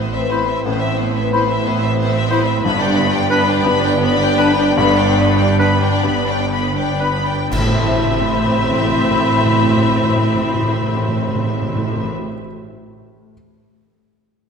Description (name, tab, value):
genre	cinematic, emotional film score for orchestra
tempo	38-61 BPM (dotted quarters)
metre	6/8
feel	rubato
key	A minor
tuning	A4 = 440 Hz
part	rich studio violin section	melody	0.0-12.1 s	C5 to B5	-23 LUFS	left 3 dB	none
part	rich studio violin section	second line	0.0-12.1 s	B4 to D5	-27 LUFS	left 2 dB	none
part	rich studio viola section	accompaniment	0.0-12.1 s	B3 to D4	-24 LUFS	right 1 dB	none
part	warm grand piano	accompaniment	0.0-13.3 s	G1 to E5	-24 LUFS	left 2 dB	none
part	mellow French horn section	sustained chords	0.0-12.1 s	A3 to D4	-24 LUFS	left 1 dB	none
part	concert harp	arpeggios	0.0-12.5 s	G2 to B5	-28 LUFS	left 6 dB	none
part	warm studio cello section	bass	0.0-12.1 s	G2 to A2	-23 LUFS	right 2 dB	none
part	warm studio double bass section	bass	0.0-12.1 s	G1 to A1	-24 LUFS	right 4 dB	none
part	dark clarinet	second line	0.3-12.1 s	D4 to E4	-26 LUFS	left 1 dB	none
part	flute section	second line	0.3-12.1 s	B5	-24 LUFS	left 4 dB	none
part	warm oboe	second line	0.3-12.1 s	B4 to C5	-27 LUFS	right 1 dB	none
part	clash cymbals and concert bass drum	percussion	7.5-9.4 s	none	-28 LUFS	equal	none
part	timpani	percussion	7.5-12.1 s	A2	-21 LUFS	right 1 dB	none
room	wet concert hall reverb, RT60 1.9 s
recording	none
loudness	-14 LUFS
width	side -6 dB against mid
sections	0.0-7.5 A section; 7.5-13.3 B section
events	slowing down 1.7-7.5; band accent 7.5-8.5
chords	0.0 Amadd9; 2.6 G; 7.5 Amadd9